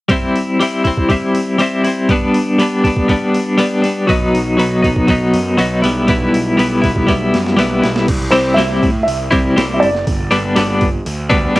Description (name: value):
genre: indie rock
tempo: 120 BPM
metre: 4/4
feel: straight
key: unclear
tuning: A4 = 440 Hz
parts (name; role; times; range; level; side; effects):
- twelve-string electric guitar; riff; 0.1-11.6 s; F#3 to E4; -13 LUFS; left 1 dB; tremolo
- boom bap sampler-style drum kit; drums; 0.1-11.6 s; crash cymbal, hi-hat, kick drum, snare drum; -21 LUFS; right 1 dB; overdrive, cassette tape
- fuzz picked electric bass; bass; 4.1-11.6 s; F#1 to A2; -21 LUFS; right 1 dB; overdrive
- dark upright piano; melody; 8.3-10.5 s; C5 to E5; -18 LUFS; right 1 dB; plate reverb
room: light reverb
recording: home recording on cassette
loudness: -12 LUFS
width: side -18 dB against mid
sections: 0.1-8.1 A section; 8.1-11.6 B section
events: drum fill 7.1-8.1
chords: 0.1 C; 2.1 G; 4.1 B; 5.8 Em/B; 8.1 C; 10.1 G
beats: | 0.10 0.59 1.09 1.59 | 2.09 2.59 3.09 3.59 | 4.09 4.59 5.08 5.58 | 6.08 6.58 7.08 7.58 | 8.08 8.57 9.07 9.57 | 10.07 10.57 11.06 11.56